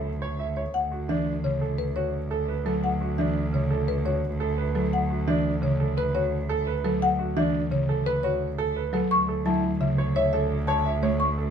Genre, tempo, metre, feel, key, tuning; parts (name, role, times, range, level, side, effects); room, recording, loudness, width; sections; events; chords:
classical, minimalist pattern music; 172 BPM; 6/4; straight; D major; A4 = 438 Hz
marimba with soft mallets; melody; 0.0-11.4 s; B4 to C#6; -29 LUFS; left 6 dB
warm grand piano; arpeggios; 0.0-11.5 s; D4 to E5; -30 LUFS; right 6 dB
rich cello; bass; 0.0-11.5 s; D2; -29 LUFS; right 1 dB
buzzing marimba with soft mallets; accompaniment; 1.1-11.3 s; C#3 to A3; -29 LUFS; equal
wet large studio reverb, RT60 1.0 s; minimal, uncompressed stereo recording; -23 LUFS; side -7 dB against mid
0.0-11.5 A section
0.0 F#m/D (rootless); 0.7 D6; 9.1 F#m/D (rootless)